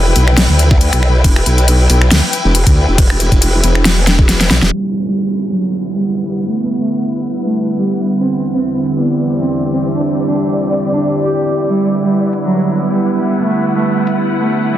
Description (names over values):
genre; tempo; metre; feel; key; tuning
heavy wobble dubstep; 138 BPM; 4/4; swing 55% on 16ths, half-time; E minor; A4 = 442 Hz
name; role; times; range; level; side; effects
growl bass; bass; 0.0-4.7 s; E1 to D2; -11 LUFS; equal; chorus, overdrive
muted studio string section; texture; 0.0-14.8 s; E3 to G5; -21 LUFS; left 2 dB; sidechain pumping
dubstep drum kit; drums; 0.2-14.2 s; crash cymbal, finger snaps, hi-hat, snare drum; -15 LUFS; equal; overdrive, low-pass filter on hats, studio ambience, low-pass filter on snare, low-pass filter on cymbals
electronic kick drum; drums; 0.7-4.3 s; none; -11 LUFS; equal; overdrive, studio ambience
dark cello; melody; 4.7-14.8 s; F#3 to G4; -16 LUFS; right 2 dB; tape echo
evolving wavetable pad; sustained chords; 5.4-14.8 s; E2 to E4; -18 LUFS; right 1 dB; chorus, built-in reverb, sidechain pumping
downlifter; sound effects; 4.8-8.2 s; none; -28 LUFS; right 2 dB; none
room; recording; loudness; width
light reverb, digital ambience; dense, heavily limited modern master, low-pass filter; -11 LUFS; side -12 dB against mid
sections
0.0-4.7 A section; 4.7-14.8 B section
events
drop 0.0-4.7; drum fill 4.1-4.7; kick drops out 4.3-4.7; band accent 4.6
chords
0.0 E5; 4.7 Em7; 8.2 Cadd9/E; 11.7 Em7